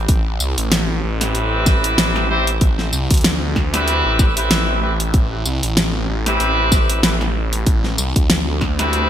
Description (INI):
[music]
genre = glitch hop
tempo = 95 BPM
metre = 4/4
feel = swing 56% on 16ths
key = A minor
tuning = A4 = 439 Hz
[part]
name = phased detuned saw bass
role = bass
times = 0.0-9.1 s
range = A1 to D2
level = -20 LUFS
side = equal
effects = phaser, tube saturation
[part]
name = electronic kick drum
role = drums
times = 0.1-8.8 s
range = none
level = -16 LUFS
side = equal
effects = none
[part]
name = pop drum kit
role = drums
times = 0.1-9.1 s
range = hi-hat, snare drum, tambourine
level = -20 LUFS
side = equal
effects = gated reverb
[part]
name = brilliant horn section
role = stabs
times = 1.2-9.1 s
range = C4 to C5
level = -21 LUFS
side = equal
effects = vintage 12-bit sampler grit, sidechain pumping, digital delay
[sound]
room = light reverb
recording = bright 1980s-style digital production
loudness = -15 LUFS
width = side -10 dB against mid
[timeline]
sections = 0.0-9.1 A section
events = none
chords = 0.0 Am7